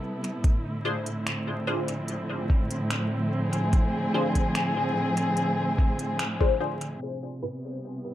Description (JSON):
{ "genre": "ambient dub", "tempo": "73 BPM", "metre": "4/4", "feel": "straight", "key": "unclear", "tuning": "A4 = 440 Hz", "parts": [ { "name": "dark chamber string section", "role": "sustained chords", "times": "0.0-8.1 s", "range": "A2 to A4", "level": "-27 LUFS", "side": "equal", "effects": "none" }, { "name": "organic electronic drum kit", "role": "drums", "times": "0.2-7.0 s", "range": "finger snaps, hi-hat", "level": "-35 LUFS", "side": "equal", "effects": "low-pass filter on hats, low-pass filter on snare, low-pass filter on room, dub echo" }, { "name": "electronic kick drum", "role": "drums", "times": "0.4-6.6 s", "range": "none", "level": "-23 LUFS", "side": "equal", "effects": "none" }, { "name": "filtered dub chord stab", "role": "stabs", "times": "0.8-7.7 s", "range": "A2 to C5", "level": "-32 LUFS", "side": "left 3 dB", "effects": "phaser, analog chorus, vintage 12-bit sampler grit, dub echo" } ], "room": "light reverb, digital ambience", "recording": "vinyl crackle, low-pass filter", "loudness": "-24 LUFS", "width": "side -13 dB against mid", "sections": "0.0-7.0 A section; 7.0-8.1 B section", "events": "band accent 6.2-6.6", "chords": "0.4 E7b9b13/A; 7.0 Am9", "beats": "| 0.44 1.26 2.08 2.91 | 3.73 4.55 5.37 6.19 | 7.02 7.84" }